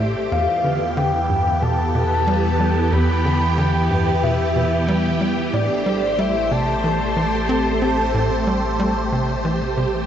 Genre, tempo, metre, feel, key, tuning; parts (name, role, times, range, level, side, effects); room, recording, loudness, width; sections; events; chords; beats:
ambient, sequencer-driven space music; 92 BPM; 4/4; straight; A minor; A4 = 440 Hz
phased string machine; sustained chords; 0.0-10.1 s; E3 to C5; -22 LUFS; equal; ensemble chorus, phaser, shimmer reverb
tight sequencer bass; riff; 0.0-9.9 s; E2 to C4; -23 LUFS; equal; shimmer reverb, analog delay
warm sub bass; bass; 0.0-10.1 s; A1 to E2; -24 LUFS; equal
wind-like tuned noise texture; texture; 0.1-10.1 s; G4; -35 LUFS; right 3 dB
soft octave-layered synth lead; melody; 0.3-10.1 s; D5 to B5; -23 LUFS; left 1 dB; chorus, phaser, shimmer reverb, analog delay
wet huge ambient reverb, RT60 7.0 s; nothing above 7.8 kHz; -17 LUFS; side -9 dB against mid
0.0-10.1 A section
0.3 Em; 5.5 Am7
| 0.32 0.97 1.62 2.27 | 2.93 3.58 4.23 4.88 | 5.54 6.19 6.84 7.49 | 8.14 8.80 9.45